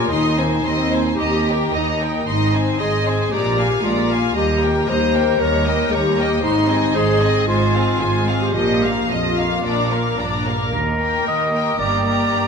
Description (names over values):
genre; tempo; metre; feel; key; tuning
quick classical-period movement for symphony orchestra; 114 BPM; 4/4; straight; Eb major; A4 = 441 Hz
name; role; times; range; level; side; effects
rich chamber violin section; melody; 0.0-12.5 s; Eb5 to C6; -27 LUFS; left 2 dB; none
clear chamber violin section; second line; 0.0-12.5 s; G4 to F5; -24 LUFS; left 2 dB; none
warm clarinet; second line; 0.0-10.2 s; Eb4 to C5; -21 LUFS; left 2 dB; none
rich symphonic viola section; accompaniment; 0.0-12.5 s; F3 to G4; -24 LUFS; equal; none
clear chamber cello section; bass; 0.0-12.5 s; Eb2 to Bb2; -24 LUFS; right 2 dB; none
warm studio double bass section; bass; 0.0-12.2 s; G1 to Eb2; -24 LUFS; right 2 dB; none
warm oboe; second line; 10.7-12.5 s; Bb4 to Eb5; -20 LUFS; right 2 dB; none
room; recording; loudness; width
wet concert hall reverb, RT60 2.4 s; none; -16 LUFS; side -6 dB against mid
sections
0.0-10.7 A section; 10.7-12.5 B section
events
none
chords
0.1 Ab/Eb; 1.2 Eb; 2.3 Ab; 3.3 Bb7; 4.4 Eb; 6.4 Ab; 7.5 Fm/Ab; 8.5 Bbsus4; 9.6 Bb; 10.7 Eb; 11.8 Gm